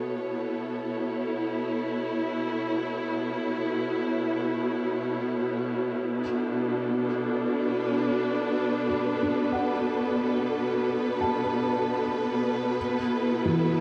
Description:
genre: ambient.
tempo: free time.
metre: none.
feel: none.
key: B minor.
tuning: A4 = 441 Hz.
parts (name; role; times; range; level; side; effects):
warm symphonic string section; sustained chords; 0.0-13.8 s; B2 to C#5; -28 LUFS; equal; none.
felt-muted upright piano; arpeggios; 8.9-13.8 s; E3 to A5; -34 LUFS; equal; delay.
room: wet lush hall reverb, RT60 2.6 s.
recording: dreamy mix soaked in reverb.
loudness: -28 LUFS.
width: mono.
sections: 0.0-13.8 A section.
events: none.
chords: 0.0 B9sus4; 6.0 Bm7.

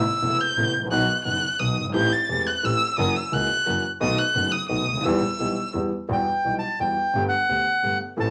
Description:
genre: tango.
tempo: 174 BPM.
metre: 3/4.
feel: rubato.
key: E minor.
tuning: A4 = 444 Hz.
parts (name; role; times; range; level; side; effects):
warm violin; second line; 0.0-5.7 s; D#6 to A6; -26 LUFS; equal; none.
warm concert grand piano; accompaniment; 0.2-8.3 s; E1 to A4; -28 LUFS; equal; none.
rich double bass; bass; 0.2-8.3 s; E1 to E2; -33 LUFS; equal; none.
bandoneon; melody; 6.1-8.3 s; F#5 to A5; -24 LUFS; equal; none.
room: moderate studio reverb, RT60 0.7 s.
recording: vinyl crackle.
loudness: -23 LUFS.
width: mono.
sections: 0.0-6.1 A section; 6.1-8.3 B section.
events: violin solo 0.0-6.1.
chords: 0.0 Amadd9; 0.9 B; 1.9 Am7; 3.0 F#7; 4.0 B7; 5.1 Em; 6.1 Emadd9; 7.1 Gadd9.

